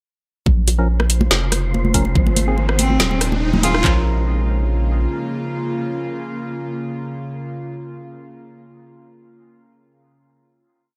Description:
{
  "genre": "deep dubstep",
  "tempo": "142 BPM",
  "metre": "4/4",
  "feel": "half-time",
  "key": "Bb minor",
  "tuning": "A4 = 439 Hz",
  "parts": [
    { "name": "bowed-like drone", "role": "sustained chords", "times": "1.1-7.2 s", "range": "C3 to F4", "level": "-30 LUFS", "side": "equal", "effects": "built-in reverb" },
    { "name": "soft dub sub bass", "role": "bass", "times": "0.5-5.1 s", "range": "Eb1 to Bb1", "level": "-21 LUFS", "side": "equal", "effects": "none" },
    { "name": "garage drum kit", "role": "drums", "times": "0.5-3.9 s", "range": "handclaps, kick drum, toms", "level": "-20 LUFS", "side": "equal", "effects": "overdrive" },
    { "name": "congas", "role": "percussion", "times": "0.5-3.7 s", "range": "none", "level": "-26 LUFS", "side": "equal", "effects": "none" },
    { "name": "riser", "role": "sound effects", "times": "2.1-3.8 s", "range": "none", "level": "-31 LUFS", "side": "equal", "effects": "none" },
    { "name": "wind-like tuned noise texture", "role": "texture", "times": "1.1-3.9 s", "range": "C5", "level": "-35 LUFS", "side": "equal", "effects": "built-in reverb" },
    { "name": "garage drum kit", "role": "drums", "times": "0.7-3.8 s", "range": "hi-hat, rim click, snare drum", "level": "-22 LUFS", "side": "equal", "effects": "overdrive" },
    { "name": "percussive organ stab", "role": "stabs", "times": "0.8-7.2 s", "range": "Eb3 to Bb4", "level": "-30 LUFS", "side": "equal", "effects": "chorus, dub echo" },
    { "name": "clear cello", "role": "melody", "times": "2.8-3.8 s", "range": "C4 to F4", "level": "-28 LUFS", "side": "equal", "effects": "low-pass filter, dub echo" }
  ],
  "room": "light reverb, digital ambience",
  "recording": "none",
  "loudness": "-19 LUFS",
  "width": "mono",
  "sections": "0.5-3.8 build; 3.8-7.2 final chord",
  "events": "build-up 0.5-3.8; filter sweep on synth stab 0.5-3.8; filter sweep on synth drone 0.5-3.8; riser 2.1-3.8",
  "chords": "0.5 Bbm; 2.2 Ab; 3.8 Bbm"
}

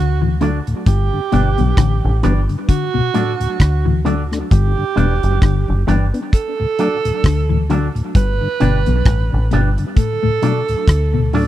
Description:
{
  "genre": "roots reggae",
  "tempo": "66 BPM",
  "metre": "4/4",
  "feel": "swing 57% on 16ths",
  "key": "D major",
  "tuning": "A4 = 439 Hz",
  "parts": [
    { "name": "breathy tenor saxophone", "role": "second line", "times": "0.0-11.3 s", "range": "F#4 to B4", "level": "-22 LUFS", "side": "right 7 dB", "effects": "tape echo" },
    { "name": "mellow electric guitar", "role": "arpeggios", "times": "0.0-11.5 s", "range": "G2 to E3", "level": "-20 LUFS", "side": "left 7 dB", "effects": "none" },
    { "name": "deep dub fingered electric bass", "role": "bass", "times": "0.0-11.5 s", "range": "E1 to D2", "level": "-16 LUFS", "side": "equal", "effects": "none" },
    { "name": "mellow tonewheel organ", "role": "accompaniment", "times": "0.2-11.4 s", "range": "D2 to D4", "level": "-23 LUFS", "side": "left 1 dB", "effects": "chorus vibrato, slow rotary speaker, tape echo" },
    { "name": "electric guitar with an envelope filter", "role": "accompaniment", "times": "0.4-11.5 s", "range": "D4 to D5", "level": "-25 LUFS", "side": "right 5 dB", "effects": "spring reverb, tape echo" },
    { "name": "damped 70s drum kit", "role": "drums", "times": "0.4-11.5 s", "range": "hi-hat, kick drum, rim click", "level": "-13 LUFS", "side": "equal", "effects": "none" }
  ],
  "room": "small room ambience",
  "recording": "dry, close 1970s-style studio recording",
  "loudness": "-14 LUFS",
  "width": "side -13 dB against mid",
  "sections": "0.0-11.5 A section",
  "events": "none",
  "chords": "0.0 D; 0.9 G; 2.7 D; 4.5 G; 6.3 D; 8.1 G; 10.0 D"
}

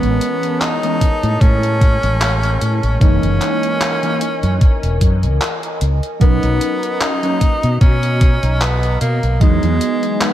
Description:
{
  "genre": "vaporwave",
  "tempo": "75 BPM",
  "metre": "4/4",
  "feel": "swing 55% on 16ths",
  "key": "B major",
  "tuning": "A4 = 439 Hz",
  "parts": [
    { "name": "breathy tenor saxophone", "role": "melody", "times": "0.0-10.3 s", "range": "G#3 to D#4", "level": "-21 LUFS", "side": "equal", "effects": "tape echo" },
    { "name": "warbly lo-fi synth keys", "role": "accompaniment", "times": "0.0-10.3 s", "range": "E3 to A#4", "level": "-20 LUFS", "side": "right 1 dB", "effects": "lush chorus, vintage 12-bit sampler grit" },
    { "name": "warbly tape-like pad", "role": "sustained chords", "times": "0.0-10.3 s", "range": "E3 to A#5", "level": "-27 LUFS", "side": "left 1 dB", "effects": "chorus, built-in reverb" },
    { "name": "mellow fretless electric bass", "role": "bass", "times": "0.0-9.8 s", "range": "E1 to B2", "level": "-16 LUFS", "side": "equal", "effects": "ensemble chorus" },
    { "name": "detuned 8-bit digital drum machine", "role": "drums", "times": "0.0-10.3 s", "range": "handclaps, hi-hat", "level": "-23 LUFS", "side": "equal", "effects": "gated reverb" },
    { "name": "electronic kick drum", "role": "drums", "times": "1.0-9.6 s", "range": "none", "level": "-12 LUFS", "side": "equal", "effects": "none" }
  ],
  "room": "little or no reverb",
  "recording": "none",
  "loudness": "-13 LUFS",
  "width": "side -12 dB against mid",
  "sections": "0.0-10.3 A section",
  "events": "none",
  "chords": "0.0 Amaj9; 3.0 F#13; 6.2 Bmaj7; 9.4 Emaj7"
}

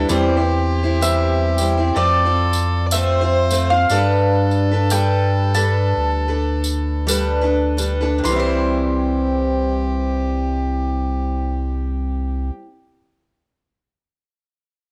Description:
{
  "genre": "acoustic folk duo or small band",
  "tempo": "50-65 BPM",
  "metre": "4/4",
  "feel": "swing 60% on 8ths",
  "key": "C major",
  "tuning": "A4 = 442 Hz",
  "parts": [
    { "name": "warm fiddle", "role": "second line", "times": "0.0-12.5 s", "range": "G4 to D5", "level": "-29 LUFS", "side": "equal", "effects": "cassette tape" },
    { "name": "picked steel-string acoustic guitar", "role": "accompaniment", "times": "0.0-12.7 s", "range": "C3 to C5", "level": "-23 LUFS", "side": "equal", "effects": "cassette tape" },
    { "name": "pure sine sub bass", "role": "bass", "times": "0.0-12.5 s", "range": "C2 to G2", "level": "-23 LUFS", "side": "equal", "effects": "none" },
    { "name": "tambourine", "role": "percussion", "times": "0.1-8.9 s", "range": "none", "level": "-28 LUFS", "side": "equal", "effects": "none" },
    { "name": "mandolin", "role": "melody", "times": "1.0-12.5 s", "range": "D5 to C6", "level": "-24 LUFS", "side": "equal", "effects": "cassette tape" }
  ],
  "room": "moderate spring reverb, RT60 1.2 s, small room ambience",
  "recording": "home recording on cassette",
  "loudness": "-19 LUFS",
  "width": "mono",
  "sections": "0.0-8.3 A section; 8.3-13.1 B section",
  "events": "slowing down 0.1-8.3",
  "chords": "0.1 C/E; 2.0 F; 3.9 Gadd9; 8.3 C"
}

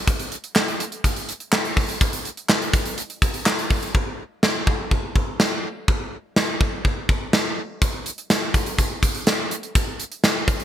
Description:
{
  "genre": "pop",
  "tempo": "124 BPM",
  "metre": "4/4",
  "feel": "straight",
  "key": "none",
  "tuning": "none",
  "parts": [
    { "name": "gated 80s drum kit", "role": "drums", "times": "0.1-10.6 s", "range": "handclaps, hi-hat, kick drum, snare drum", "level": "-20 LUFS", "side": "equal", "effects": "none" }
  ],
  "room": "light reverb",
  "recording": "bright 1980s-style digital production",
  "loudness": "-20 LUFS",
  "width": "side -11 dB against mid",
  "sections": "0.0-3.9 A section; 3.9-10.6 B section",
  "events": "none",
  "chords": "none"
}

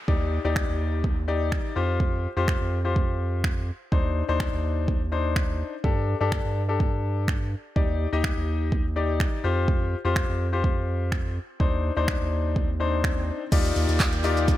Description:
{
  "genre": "dance-pop",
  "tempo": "125 BPM",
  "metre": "4/4",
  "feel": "straight",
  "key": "unclear",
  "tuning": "A4 = 442 Hz",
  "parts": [
    { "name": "downlifter and swell", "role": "sound effects", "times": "0.0-2.0, 12.6-14.6 s", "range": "none", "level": "-39 LUFS", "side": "right 1 dB", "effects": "none" },
    { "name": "clear concert grand piano", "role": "accompaniment", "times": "0.1-14.5 s", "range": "D4 to Eb5", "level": "-28 LUFS", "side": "left 6 dB", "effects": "sidechain pumping" },
    { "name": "round analog bass", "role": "bass", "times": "0.1-14.6 s", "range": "Eb2 to G2", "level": "-26 LUFS", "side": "right 1 dB", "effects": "sidechain pumping" },
    { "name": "deep house drum kit", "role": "drums", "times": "0.1-14.6 s", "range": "crash cymbal, finger snaps, handclaps, hi-hat, kick drum, shaker", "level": "-25 LUFS", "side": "right 1 dB", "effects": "none" },
    { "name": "dark brass ensemble", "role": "sustained chords", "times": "13.5-14.6 s", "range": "Eb3 to D5", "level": "-32 LUFS", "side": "equal", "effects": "sidechain pumping" },
    { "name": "group handclap", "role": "percussion", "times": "14.0-14.4 s", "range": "none", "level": "-41 LUFS", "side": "right 5 dB", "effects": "none" }
  ],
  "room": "little or no reverb",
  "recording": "none",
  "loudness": "-23 LUFS",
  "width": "side -14 dB against mid",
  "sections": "0.0-13.5 A section; 13.5-14.6 B section",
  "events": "drop 13.5-14.6",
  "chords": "0.1 Ebmaj7; 1.8 Fsus2; 3.9 Cmadd9/Eb; 5.8 Gsus2; 7.8 Ebmaj7; 9.4 Fsus2; 11.6 Cmadd9/Eb; 13.5 Ebmaj9"
}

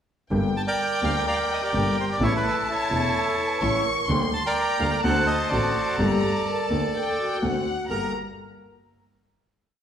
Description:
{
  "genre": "tango",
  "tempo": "126 BPM",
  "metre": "4/4",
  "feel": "rubato",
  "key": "G minor",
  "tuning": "A4 = 443 Hz",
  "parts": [
    { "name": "warm studio violin section", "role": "second line", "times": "0.3-8.1 s", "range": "F#5 to C#6", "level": "-29 LUFS", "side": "left 2 dB", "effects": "slapback echo" },
    { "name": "warm concert grand piano", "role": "accompaniment", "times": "0.3-8.1 s", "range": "E1 to A4", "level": "-28 LUFS", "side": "left 2 dB", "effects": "none" },
    { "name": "clear double bass", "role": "bass", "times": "0.3-8.1 s", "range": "E1 to D2", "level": "-30 LUFS", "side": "right 1 dB", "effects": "none" },
    { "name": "bandoneon", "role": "melody", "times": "0.6-8.1 s", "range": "E4 to A5", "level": "-25 LUFS", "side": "right 2 dB", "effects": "none" },
    { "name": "vibraphone with medium hard mallets", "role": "second line", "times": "3.1-8.1 s", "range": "F#4 to C#5", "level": "-30 LUFS", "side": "equal", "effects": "none" }
  ],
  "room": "wet large studio reverb, RT60 1.4 s",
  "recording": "heard from further back in the room",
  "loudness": "-21 LUFS",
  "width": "side -8 dB against mid",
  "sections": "0.3-7.9 A section; 7.9-9.8 final chord",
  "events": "none",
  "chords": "0.3 Gm; 2.2 A; 4.1 Gm/D; 5.0 D7; 6.0 Gmadd9; 7.4 D7; 7.9 Gmadd9"
}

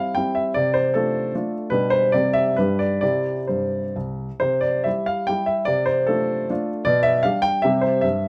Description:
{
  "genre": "classical, romantic triple-time dance for piano with dotted rhythms",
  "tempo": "121-171 BPM",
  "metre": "3/4",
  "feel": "rubato",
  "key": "C major",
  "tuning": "A4 = 440 Hz",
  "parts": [
    { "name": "warm baby grand piano", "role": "solo", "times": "0.0-8.3 s", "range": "C2 to G5", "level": "-21 LUFS", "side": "equal", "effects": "none" }
  ],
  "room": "moderate studio reverb, RT60 0.7 s",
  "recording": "dark, warm production",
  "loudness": "-21 LUFS",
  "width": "mono",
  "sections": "0.0-4.4 A section; 4.4-8.3 A section",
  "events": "none",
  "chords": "0.0 C; 0.6 Dm7/C; 1.7 G/B; 2.1 C; 2.6 G; 3.0 C; 5.7 Dm7/C; 6.9 G/B; 7.6 C"
}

